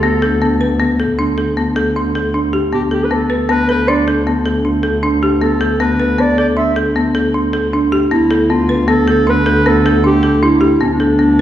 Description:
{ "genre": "contemporary instrumental, chamber music in an uneven meter", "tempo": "156 BPM", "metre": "7/4", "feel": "straight", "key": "unclear", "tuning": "A4 = 436 Hz", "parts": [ { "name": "mellow clarinet", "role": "melody", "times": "0.0-11.4 s", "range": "D4 to E5", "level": "-16 LUFS", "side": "right 2 dB", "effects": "none" }, { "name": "folk marimba with medium hard mallets", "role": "arpeggios", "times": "0.0-11.3 s", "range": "B3 to B4", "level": "-14 LUFS", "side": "left 1 dB", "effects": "none" }, { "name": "dark double bass", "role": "bass", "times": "0.0-11.4 s", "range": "D2", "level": "-17 LUFS", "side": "equal", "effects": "none" } ], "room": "wet recital hall reverb, RT60 1.6 s", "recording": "heard from further back in the room", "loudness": "-12 LUFS", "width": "side -11 dB against mid", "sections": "0.0-11.4 A section", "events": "none", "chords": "0.0 Gadd9/D (rootless)" }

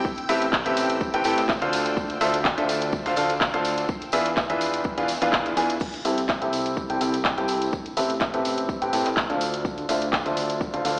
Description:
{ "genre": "piano house", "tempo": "125 BPM", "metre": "4/4", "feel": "swing 53% on 16ths", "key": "C major", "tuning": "A4 = 440 Hz", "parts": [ { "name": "string machine, violins", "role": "sustained chords", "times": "0.0-5.8 s", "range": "G5 to E6", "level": "-35 LUFS", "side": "equal", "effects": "none" }, { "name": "clear baby grand piano", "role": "riff", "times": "0.0-11.0 s", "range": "C4 to G#5", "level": "-24 LUFS", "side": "equal", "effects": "sidechain pumping, low-pass filter, tape echo" }, { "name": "electronic kick drum", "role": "drums", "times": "0.0-10.7 s", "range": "none", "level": "-28 LUFS", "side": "equal", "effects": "none" }, { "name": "tambourine", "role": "percussion", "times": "0.1-11.0 s", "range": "none", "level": "-38 LUFS", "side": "equal", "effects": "none" }, { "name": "house drum kit", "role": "drums", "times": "0.2-11.0 s", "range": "crash cymbal, handclaps, hi-hat", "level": "-27 LUFS", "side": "equal", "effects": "none" }, { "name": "fat analog bass", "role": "bass", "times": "0.3-11.0 s", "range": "A1 to A2", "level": "-30 LUFS", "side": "equal", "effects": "sidechain pumping" } ], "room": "moderate plate reverb, RT60 1.9 s", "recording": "played on a big sound system in a bare room, stone room reverb, small speaker sound", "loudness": "-21 LUFS", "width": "side -27 dB against mid", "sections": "0.0-5.8 A section; 5.8-11.0 B section", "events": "drop 0.0-5.8", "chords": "0.0 Am9; 1.7 Dm9; 3.9 E7b9; 5.8 C6; 7.7 Am9; 9.4 Dm9" }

